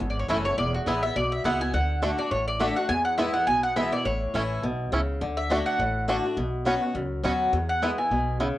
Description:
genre	bluegrass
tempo	207 BPM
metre	4/4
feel	swing 56% on 8ths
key	unclear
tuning	A4 = 440 Hz
part	picked swing-style acoustic guitar	accompaniment	0.0-8.6 s	E2 to F#4	-28 LUFS	left 1 dB	cassette tape, plate reverb
part	upright bass	bass	0.0-8.5 s	E1 to E2	-30 LUFS	equal	none
part	mandolin	melody	0.1-8.4 s	F#4 to G#5	-26 LUFS	equal	cassette tape, plate reverb
part	bluegrass banjo	melody	0.3-8.5 s	A3 to F#4	-28 LUFS	right 1 dB	cassette tape
room	moderate studio reverb, RT60 0.5 s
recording	home recording on cassette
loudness	-23 LUFS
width	side -15 dB against mid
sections	0.0-8.6 A section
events	none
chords	0.0 A; 0.6 E; 1.7 D; 2.9 E; 4.1 A; 5.2 D; 6.4 Bsus2; 7.5 E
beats	0.00 0.29 | 0.58 0.87 1.16 1.45 | 1.74 2.03 2.32 2.61 | 2.90 3.19 3.47 3.76 | 4.05 4.34 4.63 4.92 | 5.21 5.50 5.79 6.08 | 6.37 6.66 6.95 7.24 | 7.53 7.82 8.11 8.40

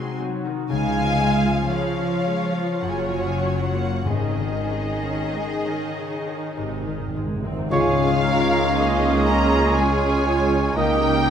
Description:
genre	classical, slow romantic movement for symphony orchestra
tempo	46-61 BPM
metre	3/4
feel	rubato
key	Db major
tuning	A4 = 440 Hz
part	muted studio violin section	melody	0.0-11.3 s	Eb5 to C6	-28 LUFS	left 3 dB	none
part	muted studio violin section	second line	0.0-11.3 s	G4 to Ab5	-28 LUFS	left 1 dB	none
part	muted studio viola section	accompaniment	0.0-11.3 s	C3 to Gb4	-28 LUFS	right 2 dB	none
part	concert harp	arpeggios	0.0-11.3 s	Gb2 to Gb5	-28 LUFS	left 9 dB	none
part	muted studio cello section	bass	0.0-11.3 s	Db2 to C4	-28 LUFS	right 2 dB	none
part	muted studio double bass section	bass	0.7-11.3 s	Gb1 to Db2	-28 LUFS	right 2 dB	none
part	timpani	percussion	4.1-7.7 s	Ab2	-31 LUFS	equal	none
part	dark clarinet	second line	7.7-11.3 s	Eb4 to F4	-31 LUFS	right 1 dB	none
part	hollow small flute group	second line	7.7-11.3 s	F5 to Bb5	-28 LUFS	left 1 dB	none
part	mellow oboe	second line	7.7-11.3 s	Db5 to Eb5	-28 LUFS	right 1 dB	none
part	warm bassoon	accompaniment	7.7-11.3 s	Ab3 to Bb3	-28 LUFS	right 3 dB	none
part	dark French horn section	sustained chords	7.7-11.2 s	Ab3 to F4	-26 LUFS	equal	none
part	mellow trumpet	stabs	7.7-11.1 s	Db5 to Eb5	-25 LUFS	right 3 dB	none
part	dark tuba	bass	7.7-11.3 s	Db2	-27 LUFS	right 4 dB	none
room	moderate recital hall reverb, RT60 1.5 s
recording	none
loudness	-19 LUFS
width	side -8 dB against mid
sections	0.0-7.7 A section; 7.7-11.3 B section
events	timpani fill 6.6-7.7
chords	0.0 Ab7/C; 0.7 Db; 2.8 Gbmaj7; 4.1 Absus4; 6.6 Ab; 7.7 Db; 10.8 Eb7/Db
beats	| 0.71 1.72 2.82 | 4.06 5.34 6.57 | 7.71 8.74 9.76 | 10.77

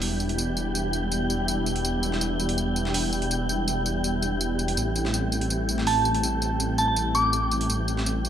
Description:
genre	drum and bass, jungle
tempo	164 BPM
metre	4/4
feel	straight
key	E minor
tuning	A4 = 439 Hz
part	airy breathy pad	sustained chords	0.0-8.3 s	G3 to E4	-29 LUFS	equal	chorus
part	detuned saw bass	bass	0.0-8.3 s	E1 to A1	-28 LUFS	equal	none
part	breakbeat sampler-style drum kit	drums	0.0-8.3 s	hi-hat, snare drum, tambourine	-30 LUFS	equal	high-pass filter on perc, high-pass filter on snare, high-pass filter on hats
part	wind-like tuned noise texture	texture	0.0-8.3 s	G4 to G5	-31 LUFS	equal	built-in reverb
part	soft synth bell	melody	5.9-7.5 s	A5 to D6	-25 LUFS	right 1 dB	chorus, phaser, dub echo
room	moderate echo chamber reverb, RT60 1.7 s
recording	none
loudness	-23 LUFS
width	side -9 dB against mid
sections	0.0-8.3 A section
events	none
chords	0.0 Em7; 4.8 Am7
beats	0.02 | 0.38 0.75 1.11 1.48 | 1.85 2.21 2.58 2.94 | 3.31 3.68 4.04 4.41 | 4.77 5.14 5.50 5.87 | 6.24 6.60 6.97 7.33 | 7.70 8.07

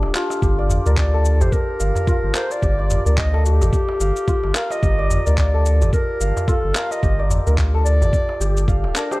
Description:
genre	organic downtempo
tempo	109 BPM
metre	4/4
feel	swing 58% on 16ths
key	unclear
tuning	A4 = 440 Hz
part	santur	arpeggios	0.0-9.2 s	D4 to F5	-25 LUFS	left 1 dB	digital delay
part	warm sub bass	bass	0.0-8.9 s	D1 to D2	-18 LUFS	equal	tube saturation
part	darbuka	percussion	0.0-9.2 s	none	-27 LUFS	equal	none
part	electronic handclaps and cabasa	drums	0.1-9.2 s	none	-27 LUFS	left 1 dB	small room ambience
part	electronic kick drum	drums	0.4-8.8 s	none	-21 LUFS	equal	small room ambience
part	mellow clarinet	melody	0.9-9.2 s	G4 to F5	-24 LUFS	equal	tape echo
room	small room ambience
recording	dark, warm production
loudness	-16 LUFS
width	side -20 dB against mid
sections	0.0-9.2 A section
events	none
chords	0.0 Dmadd11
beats	| 0.42 0.97 1.52 2.08 | 2.63 3.18 3.73 4.28 | 4.83 5.38 5.93 6.48 | 7.03 7.58 8.13 8.68

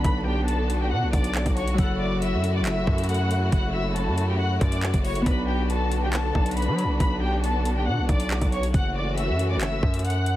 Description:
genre	hip hop, drill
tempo	138 BPM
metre	4/4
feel	half-time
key	F# phrygian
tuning	A4 = 441 Hz
part	dark studio violin section	melody	0.0-10.4 s	G4 to F#6	-30 LUFS	left 1 dB	low-pass filter
part	Celtic harp	accompaniment	0.0-8.7 s	F#3 to B4	-31 LUFS	equal	low-pass filter
part	warm symphonic string section	sustained chords	0.0-10.4 s	C#3 to F#4	-30 LUFS	equal	none
part	distorted 808-style bass	bass	0.0-10.4 s	F#1 to F#3	-25 LUFS	equal	distortion
part	drill drum kit	drums	0.0-10.4 s	handclaps, hi-hat, kick drum	-25 LUFS	equal	none
room	studio reverb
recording	heavily compressed radio sound, multiband compression, vinyl crackle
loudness	-21 LUFS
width	side -14 dB against mid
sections	0.0-10.4 A section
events	none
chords	0.0 Bm; 1.8 F#m7; 5.3 Bm; 8.7 F#m7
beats	| 0.05 0.48 0.92 1.35 | 1.78 2.22 2.65 3.09 | 3.52 3.96 4.39 4.83 | 5.26 5.70 6.13 6.57 | 7.00 7.44 7.87 8.31 | 8.74 9.18 9.61 10.05

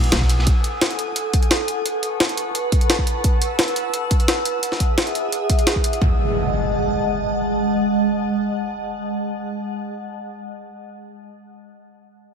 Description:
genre	liquid drum and bass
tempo	173 BPM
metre	4/4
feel	straight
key	F# dorian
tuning	A4 = 435 Hz
part	felt-muted upright piano	accompaniment	0.0-0.5 s	B3 to G#4	-38 LUFS	left 2 dB	none
part	glassy FM pad	sustained chords	0.0-9.6 s	G#3 to E6	-23 LUFS	right 1 dB	ensemble chorus, built-in reverb, sidechain pumping
part	upright bass	bass	0.0-0.5 s	B1	-20 LUFS	equal	none
part	jungle sampler-style drum kit	drums	0.0-6.0 s	hi-hat, snare drum	-21 LUFS	equal	overdrive
part	crunchy breakbeat drum kit	drums	0.1-0.5 s	ride cymbal, snare drum	-30 LUFS	equal	high-pass filter on cymbals, high-pass filter on hats, high-pass filter on snare, high-pass filter on room
part	electronic kick drum	drums	0.2-6.1 s	none	-18 LUFS	equal	none
part	impact	sound effects	6.0-10.3 s	none	-26 LUFS	equal	none
room	light reverb, studio ambience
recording	none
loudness	-18 LUFS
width	side -6 dB against mid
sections	0.0-6.0 A section; 6.0-8.8 B section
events	none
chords	0.5 F#m69; 1.9 A69; 3.2 B7sus4; 4.6 Emaj9; 6.0 F#m69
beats	0.12 | 0.47 0.81 1.16 1.51 | 1.85 2.20 2.55 2.90 | 3.24 3.59 3.94 4.28 | 4.63 4.98 5.32 5.67 | 6.02 6.36 6.71 7.06 | 7.40 7.75 8.10 8.45

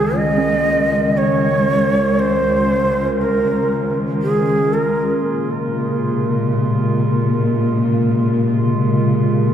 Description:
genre	ambient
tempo	free time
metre	none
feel	none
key	unclear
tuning	A4 = 439 Hz
part	breathy shakuhachi	melody	0.0-5.2 s	Ab4 to Eb5	-18 LUFS	right 2 dB	analog delay
part	warbly tape-like pad	sustained chords	0.0-9.5 s	C3 to G5	-20 LUFS	equal	chorus, built-in reverb
part	soft round pluck	arpeggios	0.0-3.2 s	Eb3 to Db5	-27 LUFS	right 5 dB	analog chorus, analog delay
part	warm studio cello section	bass	0.0-9.5 s	Db2 to Bb2	-19 LUFS	left 1 dB	none
room	wet spring reverb, RT60 2.2 s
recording	echo-heavy mix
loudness	-15 LUFS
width	side -9 dB against mid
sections	0.0-9.5 A section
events	fade-in on ambient pad 0.0-9.5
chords	0.0 Db69; 5.2 Bbm9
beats	free time

